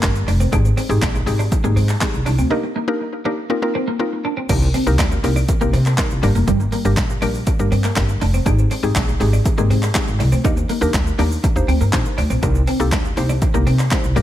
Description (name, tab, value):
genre	dance-pop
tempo	121 BPM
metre	4/4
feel	straight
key	unclear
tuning	A4 = 440 Hz
part	mallet-like synth pluck	accompaniment	0.0-14.2 s	G3 to C5	-23 LUFS	left 2 dB	chorus, sidechain pumping, analog delay
part	twelve-string electric guitar	riff	0.0-14.2 s	G3 to Eb4	-25 LUFS	right 1 dB	wide subtle chorus, analog delay
part	upright bass	bass	0.0-14.2 s	F1 to C3	-18 LUFS	equal	sidechain pumping
part	punchy analog drum machine	drums	0.0-14.2 s	crash cymbal, handclaps, hi-hat, kick drum, shaker, snare drum	-20 LUFS	equal	analog delay
part	group handclap	percussion	0.0-14.0 s	none	barely audible	none	none
room	digital ambience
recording	echo-heavy mix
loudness	-15 LUFS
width	side -12 dB against mid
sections	0.0-4.5 A section; 4.5-14.2 A section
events	break 2.5-4.5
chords	0.0 Gm; 0.5 Abmaj7; 2.5 Ebmaj7; 3.5 F7sus4; 4.5 Cm7; 6.2 Gm; 8.5 Abmaj7; 10.4 Ebmaj7; 12.4 Cm7